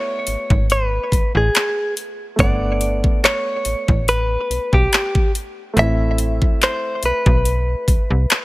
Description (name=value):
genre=contemporary R&B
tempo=71 BPM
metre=4/4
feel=swing 54% on 16ths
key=unclear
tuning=A4 = 439 Hz
part: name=direct-recorded clean electric guitar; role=melody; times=0.0-8.4 s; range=G4 to E5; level=-21 LUFS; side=equal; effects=digital delay
part: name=warm grand piano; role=accompaniment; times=0.0-8.4 s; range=A3 to F#5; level=-28 LUFS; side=right 2 dB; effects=none
part: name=slap-like FM bass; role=bass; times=0.3-8.3 s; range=G1 to C2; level=-19 LUFS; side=equal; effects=none
part: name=trap drum kit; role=drums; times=0.3-8.4 s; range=handclaps, hi-hat, kick drum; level=-17 LUFS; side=equal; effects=none
room=little or no reverb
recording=none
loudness=-16 LUFS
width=side -19 dB against mid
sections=0.0-8.4 A section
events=none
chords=0.0 D6 (rootless); 2.4 Gmaj7; 5.8 Amadd9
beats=0.70 1.54 | 2.39 3.23 4.08 4.92 | 5.77 6.61 7.46 8.30